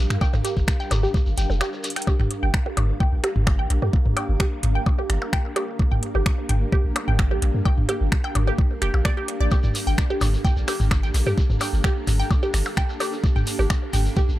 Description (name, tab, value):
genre	minimal techno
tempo	129 BPM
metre	4/4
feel	straight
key	G minor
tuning	A4 = 440 Hz
part	punchy sub bass	bass	0.0-14.4 s	F1 to G2	-22 LUFS	equal	sidechain pumping
part	granular cloud pad	texture	0.0-14.4 s	D4 to F5	-33 LUFS	equal	built-in reverb, sidechain pumping
part	swarming drone	texture	0.0-14.4 s	G3 to Bb4	-37 LUFS	equal	built-in reverb, sidechain pumping
part	garage drum kit	drums	0.1-14.0 s	finger snaps, hi-hat	-31 LUFS	equal	tape echo
part	shekere	percussion	0.1-2.1, 9.5-14.4 s	none	-36 LUFS	left 2 dB	tape echo
part	resonant blip pluck	riff	0.2-14.2 s	G4 to G5	-30 LUFS	right 2 dB	phaser, sidechain pumping, tape echo
part	electronic kick drum	drums	0.2-14.3 s	none	-21 LUFS	equal	none
part	electronic percussion blips and toms	percussion	0.2-14.3 s	none	-28 LUFS	left 1 dB	overdrive, tape echo
room	light reverb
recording	echo-heavy mix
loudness	-19 LUFS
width	side -15 dB against mid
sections	0.0-2.1 A section; 2.1-14.4 B section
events	break 1.6-2.1; drum fill 1.8; drop 2.1-14.4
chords	0.0 Gm7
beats	| 0.21 0.68 1.14 1.61 | 2.07 2.54 3.00 3.47 | 3.93 4.40 4.86 5.33 | 5.79 6.26 6.72 7.19 | 7.66 8.12 8.59 9.05 | 9.52 9.98 10.45 10.91 | 11.38 11.84 12.31 12.77 | 13.24 13.70 14.17